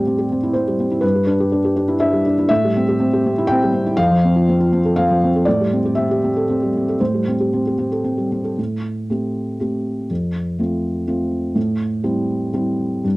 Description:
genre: classical, contemporary piece for solo felt piano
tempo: 112-124 BPM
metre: 3/4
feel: rubato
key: A minor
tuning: A4 = 439 Hz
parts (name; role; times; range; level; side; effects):
- felt-muted upright piano; solo; 0.0-13.2 s; F2 to G5; -16 LUFS; equal; cassette tape
room: light reverb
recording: home recording on cassette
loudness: -16 LUFS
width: side -21 dB against mid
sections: 0.0-8.6 A section; 8.6-13.2 B section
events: none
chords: 0.0 Am7; 1.0 G6; 2.5 Am7; 4.0 F; 5.5 Am7; 10.1 F; 11.6 Am7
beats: 0.04 0.54 | 1.03 1.51 2.00 | 2.49 2.98 3.48 | 3.97 4.47 4.97 | 5.45 5.96 6.47 | 6.99 7.52 8.05 | 8.58 9.09 9.60 | 10.10 10.59 11.07 | 11.56 12.04 12.54 | 13.05

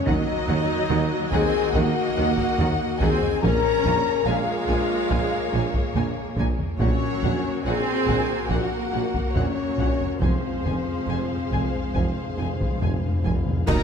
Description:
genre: cinematic, epic orchestral film score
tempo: 71 BPM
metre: 4/4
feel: straight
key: unclear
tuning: A4 = 440 Hz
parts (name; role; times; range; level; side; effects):
- warm symphonic violin section; second line; 0.0-13.8 s; Eb4 to Bb5; -31 LUFS; left 3 dB; none
- clear symphonic viola section; accompaniment; 0.0-13.8 s; F3 to Eb4; -30 LUFS; right 4 dB; none
- dark French horn section; sustained chords; 0.0-13.8 s; C4 to Bb4; -27 LUFS; left 6 dB; none
- warm symphonic string section; sustained chords; 0.0-13.8 s; Ab3 to F5; -32 LUFS; left 1 dB; none
- dark symphonic violin section; melody; 0.1-13.8 s; Gb5 to Bb5; -37 LUFS; left 4 dB; none
- bright symphonic double bass section; bass; 0.1-13.8 s; F1 to Eb2; -31 LUFS; right 4 dB; none
- mellow tuba; bass; 0.1-13.8 s; F1 to Eb2; -30 LUFS; right 4 dB; none
- warm symphonic cello section; bass; 0.1-13.8 s; Eb2 to Eb3; -32 LUFS; right 4 dB; none
- taiko ensemble; drums; 0.1-13.8 s; none; -27 LUFS; equal; none
- timpani; percussion; 3.4-13.7 s; F2 to Bb2; -30 LUFS; left 1 dB; none
- silver concert flute; second line; 13.7-13.8 s; Bb4; -29 LUFS; left 1 dB; none
- clash cymbals and concert bass drum; percussion; 13.7-13.8 s; none; -26 LUFS; equal; none
- sub drop; sound effects; 13.7-13.8 s; none; -30 LUFS; right 1 dB; none
room: moderate concert hall reverb, RT60 2.2 s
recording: dark, warm production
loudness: -21 LUFS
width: side -6 dB against mid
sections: 0.0-13.7 A section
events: timpani fill 10.2-13.7; band accent 13.7; impact 13.7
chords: 0.1 Ebm; 3.4 Bbm7; 6.8 Gb/Bb; 10.2 Fm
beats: | 0.07 0.91 1.75 2.59 | 3.43 4.27 5.11 5.95 | 6.80 7.66 8.51 9.36 | 10.22 11.09 11.96 12.82 | 13.68

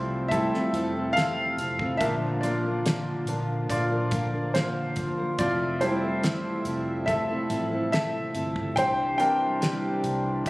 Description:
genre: pop ballad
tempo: 71 BPM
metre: 4/4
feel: straight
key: F major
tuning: A4 = 440 Hz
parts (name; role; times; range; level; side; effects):
- clear concert grand piano; accompaniment; 0.0-10.5 s; E3 to G5; -27 LUFS; equal; none
- warm analog pad; sustained chords; 0.0-10.5 s; C3 to E5; -33 LUFS; equal; chorus
- fingerpicked steel-string acoustic guitar; arpeggios; 0.0-10.5 s; Bb2 to Bb4; -32 LUFS; equal; ping-pong delay
- vintage muted fingered electric bass; bass; 0.0-10.5 s; F1 to F2; -34 LUFS; equal; none
- damped 70s drum kit; drums; 0.3-10.5 s; hi-hat, kick drum, snare drum; -30 LUFS; equal; none
room: moderate concert hall reverb, RT60 2.3 s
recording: recorded on a phone in the room, studio reverb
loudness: -24 LUFS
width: side -20 dB against mid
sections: 0.0-10.5 A section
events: grand piano solo 0.0-10.5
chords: 0.0 Fmaj7/C; 2.0 Bb; 5.4 Fmaj7; 8.8 Cadd9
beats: 0.32 1.17 | 2.01 2.86 3.70 4.55 | 5.39 6.24 7.08 7.93 | 8.77 9.62 10.46

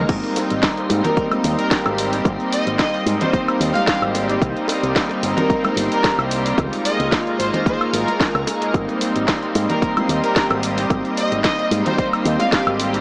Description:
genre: nu-disco, nu disco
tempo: 111 BPM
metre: 4/4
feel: swing 54% on 16ths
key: Ab major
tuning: A4 = 438 Hz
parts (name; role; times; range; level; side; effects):
- warm analog pad; accompaniment; 0.0-13.0 s; G3 to Bb4; -21 LUFS; equal; chorus, cassette tape, dub echo
- string machine, full ensemble; sustained chords; 0.0-13.0 s; G4 to Db6; -28 LUFS; equal; ensemble chorus, vintage 12-bit sampler grit, sidechain pumping
- fingered electric bass with an envelope filter; bass; 0.0-13.0 s; G1 to Ab2; -23 LUFS; equal; none
- electronic kick drum; drums; 0.1-12.6 s; none; -21 LUFS; equal; none
- house drum kit; drums; 0.1-13.0 s; crash cymbal, hi-hat, shaker, snare drum, woodblock; -23 LUFS; equal; dub echo
- bongos and congas; percussion; 0.4-12.9 s; none; -30 LUFS; equal; none
- rich chamber violin section; melody; 1.0-12.6 s; Bb4 to F5; -24 LUFS; equal; dub echo
room: moderate spring reverb, RT60 2.4 s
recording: echo-heavy mix, small speaker sound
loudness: -16 LUFS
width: side -30 dB against mid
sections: 0.0-13.0 A section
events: none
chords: 0.1 Abmaj7; 4.4 Cm7; 6.6 Db6; 8.7 Abmaj7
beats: | 0.09 0.63 1.17 1.71 | 2.25 2.79 3.34 3.88 | 4.42 4.96 5.50 6.04 | 6.58 7.12 7.66 8.20 | 8.74 9.28 9.82 10.36 | 10.90 11.44 11.98 12.53

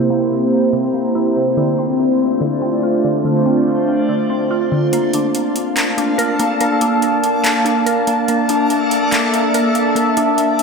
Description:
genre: hip hop, atmospheric cloud-rap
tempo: 143 BPM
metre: 4/4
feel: half-time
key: Bb lydian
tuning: A4 = 440 Hz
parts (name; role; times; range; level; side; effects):
- warbly tape-like pad; sustained chords; 0.0-10.6 s; A3 to A5; -15 LUFS; equal; chorus, built-in reverb
- glassy wavetable pluck; arpeggios; 0.0-10.6 s; C3 to Bb4; -22 LUFS; equal; chorus, ping-pong delay
- backwards swelling texture; texture; 0.0-10.6 s; Bb3 to C6; -26 LUFS; left 2 dB; built-in reverb, wide subtle chorus
- smooth R&B drum kit; drums; 4.9-10.6 s; handclaps, hi-hat; -22 LUFS; equal; none
room: wet lush hall reverb, RT60 2.0 s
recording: dreamy mix soaked in reverb, low-pass filter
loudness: -14 LUFS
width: side -4 dB against mid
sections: 0.0-4.9 A section; 4.9-10.6 B section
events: filter sweep 0.0-4.9; kick muted 4.9-10.6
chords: 0.0 C7; 1.6 Dm7; 4.9 Bbmaj7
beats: 0.31 0.73 1.15 | 1.57 1.99 2.41 2.83 | 3.25 3.67 4.09 4.51 | 4.93 5.35 5.77 6.19 | 6.61 7.03 7.45 7.87 | 8.29 8.70 9.12 9.54 | 9.96 10.38

